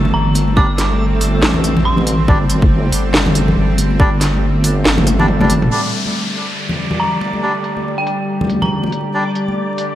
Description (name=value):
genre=deep dubstep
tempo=140 BPM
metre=4/4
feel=swing 58% on 16ths, half-time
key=G minor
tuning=A4 = 441 Hz
part: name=bowed-like drone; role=sustained chords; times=0.0-9.9 s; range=D3 to G4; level=-22 LUFS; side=equal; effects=built-in reverb
part: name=deep soft wobble bass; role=bass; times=0.0-5.7 s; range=G1 to A1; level=-16 LUFS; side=equal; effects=chorus, tube saturation
part: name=backwards swelling texture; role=texture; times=0.0-9.9 s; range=A3 to D5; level=-26 LUFS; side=right 1 dB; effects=built-in reverb
part: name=dark detuned synth bell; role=melody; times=0.1-2.2, 7.0-9.1 s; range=G5 to D6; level=-24 LUFS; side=equal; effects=chorus, phaser, dub echo
part: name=congas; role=percussion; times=0.1-9.6 s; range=none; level=-22 LUFS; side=left 2 dB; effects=none
part: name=garage drum kit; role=drums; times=0.4-9.9 s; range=hi-hat, snare drum, toms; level=-18 LUFS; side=equal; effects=low-pass filter on hats, low-pass filter on snare, low-pass filter on toms, low-pass filter on room
part: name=melodica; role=stabs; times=0.6-9.2 s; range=G3 to D5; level=-23 LUFS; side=equal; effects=dub echo
part: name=electronic kick drum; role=drums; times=0.6-4.1 s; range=none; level=-13 LUFS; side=equal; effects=none
part: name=downlifter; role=sound effects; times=5.7-9.1 s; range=none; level=-25 LUFS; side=left 1 dB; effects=none
room=light reverb, digital ambience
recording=vinyl crackle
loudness=-13 LUFS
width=side -12 dB against mid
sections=0.0-5.7 A section; 5.7-9.9 B section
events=drop 0.0-5.7; drum fill 5.1-5.7; filter sweep on drum 5.7-9.9; filter sweep on synth drone 5.7-9.9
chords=0.0 G5